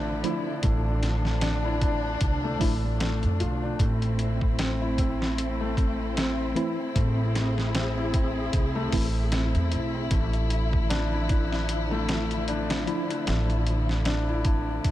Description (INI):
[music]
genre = trip hop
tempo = 76 BPM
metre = 4/4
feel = swing 57% on 16ths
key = unclear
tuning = A4 = 443 Hz
[part]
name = warm studio string section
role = sustained chords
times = 0.0-14.9 s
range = D3 to G#4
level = -33 LUFS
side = left 1 dB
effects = none
[part]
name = felt-muted upright piano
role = arpeggios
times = 0.0-14.9 s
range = A3 to F4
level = -31 LUFS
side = left 2 dB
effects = tape echo
[part]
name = upright bass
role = bass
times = 0.0-14.9 s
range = A1 to F2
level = -27 LUFS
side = equal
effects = none
[part]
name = tine electric piano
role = accompaniment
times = 0.2-13.1 s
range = E3 to E4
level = -34 LUFS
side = right 1 dB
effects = none
[part]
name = boom bap sampler-style drum kit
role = drums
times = 0.2-14.9 s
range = hi-hat, kick drum, snare drum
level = -28 LUFS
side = equal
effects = vintage 12-bit sampler grit
[sound]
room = small room reverb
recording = none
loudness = -24 LUFS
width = side -14 dB against mid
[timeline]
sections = 0.0-14.9 A section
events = none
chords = 0.0 Dmadd9/A; 3.8 Am; 10.1 Dmadd9/A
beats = | 0.64 1.43 2.22 3.01 | 3.79 4.58 5.37 6.16 | 6.95 7.74 8.53 9.32 | 10.11 10.90 11.69 12.48 | 13.27 14.06 14.85